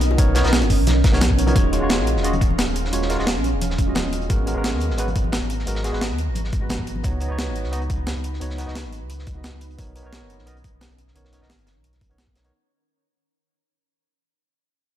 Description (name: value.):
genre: liquid drum and bass.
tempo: 175 BPM.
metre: 4/4.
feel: straight.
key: unclear.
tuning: A4 = 440 Hz.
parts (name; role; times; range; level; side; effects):
warm velvety synth lead; melody; 0.0-1.2 s; Eb5; -35 LUFS; left 1 dB; chorus, dub echo.
shimmering ambient pad; sustained chords; 0.0-12.5 s; D#3 to Bb5; -28 LUFS; right 2 dB; chorus, built-in reverb, sidechain pumping.
sub bass with octave; bass; 0.0-12.5 s; Eb1 to Eb2; -24 LUFS; equal; tube saturation.
breakbeat sampler-style drum kit; drums; 0.0-12.5 s; hi-hat, snare drum; -26 LUFS; equal; overdrive.
crunchy breakbeat drum kit; drums; 0.0-12.5 s; hi-hat, snare drum; -33 LUFS; equal; high-pass filter on hats, high-pass filter on snare, high-pass filter on room.
bongos and congas; percussion; 0.1-7.0 s; none; -31 LUFS; left 5 dB; none.
barky tine electric piano; accompaniment; 0.2-12.5 s; Ab3 to D#5; -28 LUFS; equal; dub echo.
electronic kick drum; drums; 0.2-12.3 s; none; -21 LUFS; equal; overdrive.
room: light reverb, small room ambience.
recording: dark, warm production.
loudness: -19 LUFS.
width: side -11 dB against mid.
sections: 0.0-1.6 A section; 1.6-12.5 B section.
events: drop 0.0-1.6; fade-out 1.6-12.5; filter sweep on ambient pad 1.6-12.5.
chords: 0.0 Bmaj9; 1.6 Ebm11; 4.3 Abm9; 7.0 Db9sus4; 9.8 Bmaj9.